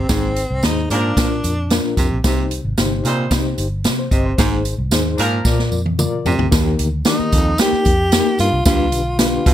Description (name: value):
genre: uptempo 1960s-style soul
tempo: 112 BPM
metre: 4/4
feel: straight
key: Eb major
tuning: A4 = 440 Hz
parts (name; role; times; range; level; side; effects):
- breathy tenor saxophone; melody; 0.0-1.9, 7.1-9.5 s; C4 to G4; -20 LUFS; equal; none
- breathy baritone saxophone; riff; 0.0-9.5 s; Eb2 to C3; -22 LUFS; right 4 dB; none
- vintage muted fingered electric bass; bass; 0.0-9.5 s; G1 to C3; -21 LUFS; equal; none
- mellow reed electric piano; accompaniment; 0.1-9.5 s; Ab2 to Eb5; -23 LUFS; left 4 dB; fast tremolo, tube saturation
- swinging big-band drum kit; drums; 0.1-9.5 s; hi-hat, kick drum, snare drum, toms; -18 LUFS; equal; none
- tambourine; percussion; 0.1-9.5 s; none; -29 LUFS; right 6 dB; none
- clear horn section; second line; 0.9-5.6 s; F3 to C5; -23 LUFS; equal; none
room: light reverb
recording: none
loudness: -15 LUFS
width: side -11 dB against mid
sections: 0.0-6.5 A section; 6.5-9.5 B section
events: drum fill 5.5-6.5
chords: 0.1 Ab; 1.2 Bb; 2.2 Cm; 4.4 Ab; 5.5 Bb; 6.5 Eb; 8.7 G7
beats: | 0.10 0.63 1.17 1.71 | 2.24 2.78 3.31 3.85 | 4.39 4.92 5.46 5.99 | 6.52 7.06 7.59 8.12 | 8.66 9.19